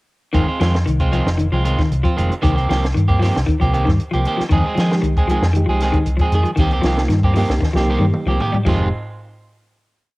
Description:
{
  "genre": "afrobeat",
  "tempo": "116 BPM",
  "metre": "4/4",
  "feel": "straight",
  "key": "F minor",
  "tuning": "A4 = 440 Hz",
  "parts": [
    { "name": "clean electric guitar", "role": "arpeggios", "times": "0.3-8.8 s", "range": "Eb3 to G3", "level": "-23 LUFS", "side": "left 3 dB", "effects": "analog chorus" },
    { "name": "electric guitar at the edge of break-up", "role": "stabs", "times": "0.3-8.9 s", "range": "Eb3 to Ab4", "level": "-22 LUFS", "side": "right 2 dB", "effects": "spring reverb" },
    { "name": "hollow-body short-scale fingered electric bass", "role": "bass", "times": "0.3-8.9 s", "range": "F1 to F3", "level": "-18 LUFS", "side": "equal", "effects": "none" },
    { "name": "compact cocktail drum kit", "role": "drums", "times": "0.3-8.8 s", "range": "crash cymbal, hi-hat, kick drum, snare drum, toms", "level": "-21 LUFS", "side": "equal", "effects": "cassette tape" },
    { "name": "reed electric piano", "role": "accompaniment", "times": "4.9-8.9 s", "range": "Ab3 to Ab4", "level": "-25 LUFS", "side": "right 2 dB", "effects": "harmonic tremolo" }
  ],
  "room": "little or no reverb",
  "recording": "home recording on cassette",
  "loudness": "-15 LUFS",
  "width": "side -21 dB against mid",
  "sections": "0.3-8.7 groove; 8.7-10.2 final chord",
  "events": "drum fill 7.6-8.7",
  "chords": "0.3 Fm7; 2.4 Cm7; 4.5 Fm7; 6.6 Cm7; 8.7 Fm7"
}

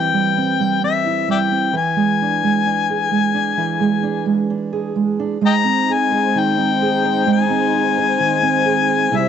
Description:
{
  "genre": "acoustic folk-pop ballad",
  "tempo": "65 BPM",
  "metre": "4/4",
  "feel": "straight",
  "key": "unclear",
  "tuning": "A4 = 440 Hz",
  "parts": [
    { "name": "clear harmonica", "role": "melody", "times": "0.0-9.3 s", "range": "D5 to Bb5", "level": "-18 LUFS", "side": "left 8 dB", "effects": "cassette tape" },
    { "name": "fingerpicked steel-string acoustic guitar", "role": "accompaniment", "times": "0.0-9.3 s", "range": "C3 to C5", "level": "-18 LUFS", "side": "right 6 dB", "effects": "cassette tape" },
    { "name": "dark chamber string section", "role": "sustained chords", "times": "5.4-9.3 s", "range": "G3 to C5", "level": "-23 LUFS", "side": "left 2 dB", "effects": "cassette tape" }
  ],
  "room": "light reverb, studio reverb",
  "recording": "home recording on cassette, nothing above 8.0 kHz",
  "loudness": "-15 LUFS",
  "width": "side -8 dB against mid",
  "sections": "0.0-5.4 A section; 5.4-9.3 B section",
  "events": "none",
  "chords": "0.0 Cmaj7/E; 1.7 E7; 5.4 Abmaj7"
}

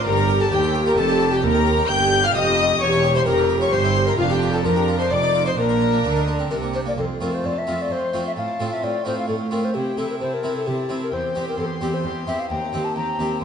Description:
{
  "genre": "classical, baroque-style concerto movement with solo episodes",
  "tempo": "130 BPM",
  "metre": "3/4",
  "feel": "straight",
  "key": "Bb major, F major from 7.0 s",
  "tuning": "A4 = 439 Hz",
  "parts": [
    { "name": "warm chamber violin section", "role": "melody", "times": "0.0-13.4 s", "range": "F5 to G6", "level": "-27 LUFS", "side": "left 6 dB", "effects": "none" },
    { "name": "warm chamber violin section", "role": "second line", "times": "0.0-13.4 s", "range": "E4 to G5", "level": "-28 LUFS", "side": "equal", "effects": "none" },
    { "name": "dark chamber viola section", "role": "accompaniment", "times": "0.0-13.4 s", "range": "C4 to G4", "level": "-27 LUFS", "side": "right 1 dB", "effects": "none" },
    { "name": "harpsichord", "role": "accompaniment", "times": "0.0-13.4 s", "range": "Eb2 to E5", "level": "-27 LUFS", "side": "right 1 dB", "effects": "none" },
    { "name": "rich chamber cello section", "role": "bass", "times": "0.0-13.4 s", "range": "Eb2 to F3", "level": "-28 LUFS", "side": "right 4 dB", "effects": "none" },
    { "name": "rich chamber double bass section", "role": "bass", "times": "0.0-7.0 s", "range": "E1 to F2", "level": "-24 LUFS", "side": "right 4 dB", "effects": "none" },
    { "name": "mellow hollow tenor recorder", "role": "melody", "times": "0.1-13.4 s", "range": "F4 to Bb5", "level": "-24 LUFS", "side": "left 4 dB", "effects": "none" }
  ],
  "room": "wet recital hall reverb, RT60 1.5 s",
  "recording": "nothing above 10.6 kHz",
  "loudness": "-18 LUFS",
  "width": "side -7 dB against mid",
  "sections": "0.0-7.0 A section; 7.0-13.4 B section",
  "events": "none",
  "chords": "0.1 G5; 1.4 Eb; 2.8 A7b9b13/E (rootless); 4.2 Bbmaj13/F; 5.1 Dm7/F; 5.6 Bb; 7.0 F; 8.4 F/A; 9.7 C; 11.1 C/E; 12.5 Cm7/Eb"
}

